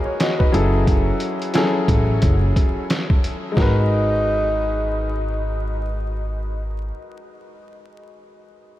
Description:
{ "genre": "hip hop, boom-bap hip-hop", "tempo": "89 BPM", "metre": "4/4", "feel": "swing 58% on 16ths", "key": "G# minor", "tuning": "A4 = 440 Hz", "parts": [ { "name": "clear concert grand piano", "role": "accompaniment", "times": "0.0-8.8 s", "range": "F#3 to D#5", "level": "-23 LUFS", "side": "left 2 dB", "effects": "high-pass filter, low-pass filter" }, { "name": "trip hop sampler-style drum kit", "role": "drums", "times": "0.2-3.8 s", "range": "hi-hat, kick drum, snare drum", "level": "-20 LUFS", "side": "equal", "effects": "none" }, { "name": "upright bass", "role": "bass", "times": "0.5-6.9 s", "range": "F#1 to A1", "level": "-21 LUFS", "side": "equal", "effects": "none" }, { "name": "breathy tenor saxophone", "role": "melody", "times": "3.6-5.6 s", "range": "D#4", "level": "-27 LUFS", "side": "right 1 dB", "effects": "high-pass filter, low-pass filter, ping-pong delay" } ], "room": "moderate huge ambient reverb, RT60 8.7 s", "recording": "dreamy mix soaked in reverb, vinyl crackle", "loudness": "-17 LUFS", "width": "side -14 dB against mid", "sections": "0.0-3.6 A section; 3.6-6.3 B section", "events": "none", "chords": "0.0 G#m9; 0.5 F#m9; 3.6 G#m9" }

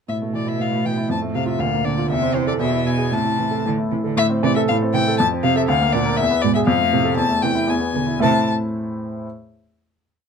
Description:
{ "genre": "quick classical-period movement for piano trio", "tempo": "118 BPM", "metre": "2/4", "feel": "straight", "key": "A minor", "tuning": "A4 = 440 Hz", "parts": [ { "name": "rich violin", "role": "melody", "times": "0.1-8.5 s", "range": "C5 to A5", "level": "-22 LUFS", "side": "left 6 dB", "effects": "none" }, { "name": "rich cello", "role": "second line", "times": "0.1-8.5 s", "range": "G#2 to D3", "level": "-24 LUFS", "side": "right 11 dB", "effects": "none" }, { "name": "clear baby grand piano", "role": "accompaniment", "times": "0.1-9.3 s", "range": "D2 to E5", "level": "-20 LUFS", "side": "equal", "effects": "none" } ], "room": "moderate studio reverb, RT60 0.5 s", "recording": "dark, warm production", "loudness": "-17 LUFS", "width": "side -6 dB against mid", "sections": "0.1-4.2 A section; 4.2-8.2 A section; 8.2-9.2 final chord", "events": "none", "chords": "0.1 A5; 1.1 F; 1.6 Bb/D; 2.1 Am/E; 2.6 E; 3.1 Am; 5.2 F; 5.7 Bb/D; 6.2 E; 6.7 F; 7.2 Am/E; 7.7 E7; 8.2 Am" }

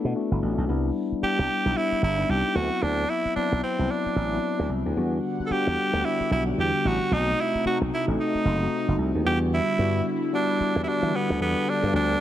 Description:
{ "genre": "R&B", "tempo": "112 BPM", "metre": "4/4", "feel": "swing 60% on 16ths", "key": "E minor", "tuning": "A4 = 438 Hz", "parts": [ { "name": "mellow tine electric piano", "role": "accompaniment", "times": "0.0-12.2 s", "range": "F#3 to A4", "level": "-28 LUFS", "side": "left 4 dB", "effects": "none" }, { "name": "slap bass with an envelope filter", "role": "bass", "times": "0.0-12.1 s", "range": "F#1 to E3", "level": "-26 LUFS", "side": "right 1 dB", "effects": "none" }, { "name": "raspy tenor saxophone", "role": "melody", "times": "1.2-12.2 s", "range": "B3 to A4", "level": "-26 LUFS", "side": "right 2 dB", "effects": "none" }, { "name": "lush unison pad", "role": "sustained chords", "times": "5.0-12.2 s", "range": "C3 to F#5", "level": "-32 LUFS", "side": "right 2 dB", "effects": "chorus, phaser" } ], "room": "light reverb, digital ambience", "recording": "none", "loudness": "-22 LUFS", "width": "side -12 dB against mid", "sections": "0.7-9.3 A section; 9.3-12.2 B section", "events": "none", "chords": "0.0 Bm7; 0.7 Cmaj7; 2.6 D13; 5.0 Em9; 7.1 B7b9; 9.3 Em7" }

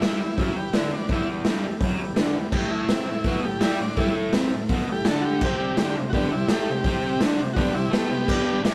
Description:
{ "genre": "garage rock duo or trio", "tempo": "167 BPM", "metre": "4/4", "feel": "straight", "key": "unclear", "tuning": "A4 = 440 Hz", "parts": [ { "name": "overdriven combo organ", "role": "melody", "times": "0.0-8.6 s", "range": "G3 to A4", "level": "-30 LUFS", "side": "equal", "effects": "none" }, { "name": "combo organ", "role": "sustained chords", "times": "0.0-8.7 s", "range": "A3 to D5", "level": "-39 LUFS", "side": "equal", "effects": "none" }, { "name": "crunchy overdriven guitar", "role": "riff", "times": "0.0-8.7 s", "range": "E2 to A4", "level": "-29 LUFS", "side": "equal", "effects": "none" }, { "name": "raw garage drum kit", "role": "drums", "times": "0.0-8.7 s", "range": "crash cymbal, hi-hat, kick drum, snare drum", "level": "-27 LUFS", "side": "equal", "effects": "none" } ], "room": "light reverb", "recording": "rough rehearsal-room recording", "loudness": "-24 LUFS", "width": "mono", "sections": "0.0-8.7 A section", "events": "transistor combo organ solo 0.0-8.7", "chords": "0.0 Em; 2.5 A5; 5.4 C5" }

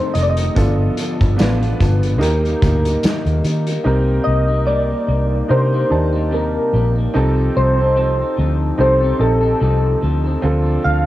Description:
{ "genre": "indie pop, bedroom pop", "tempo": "73 BPM", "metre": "4/4", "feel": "swing 55% on 16ths", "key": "unclear", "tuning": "A4 = 440 Hz", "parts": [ { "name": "soft electric-piano-like synth keys", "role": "melody", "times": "0.0-11.1 s", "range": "A4 to F5", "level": "-20 LUFS", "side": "equal", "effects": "ensemble chorus, cassette tape, tape echo, plate reverb" }, { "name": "clear upright piano", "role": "accompaniment", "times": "0.0-11.1 s", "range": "D3 to A5", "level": "-22 LUFS", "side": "right 2 dB", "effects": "cassette tape, plate reverb" }, { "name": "electric guitar through a small old amp", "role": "accompaniment", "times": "0.0-11.1 s", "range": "F2 to A4", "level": "-24 LUFS", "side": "left 3 dB", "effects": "wide subtle chorus, warbly pitch drift, cassette tape, plate reverb" }, { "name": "loose indie drum kit", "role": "drums", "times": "0.1-3.8 s", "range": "hi-hat, kick drum, snare drum", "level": "-20 LUFS", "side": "equal", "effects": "cassette tape" }, { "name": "vintage muted fingered electric bass", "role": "bass", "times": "0.2-11.1 s", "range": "F1 to Eb3", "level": "-17 LUFS", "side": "equal", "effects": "none" }, { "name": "tambourine", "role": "percussion", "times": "0.2-3.7 s", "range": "none", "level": "-42 LUFS", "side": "right 4 dB", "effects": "none" } ], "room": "light reverb", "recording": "home recording on cassette", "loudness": "-14 LUFS", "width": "side -15 dB against mid", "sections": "0.0-3.9 A section; 3.9-11.1 B section", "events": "none", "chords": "0.0 F7; 0.6 G7; 2.2 Eb; 3.9 Cm7; 7.1 F7/C; 10.4 Dm7" }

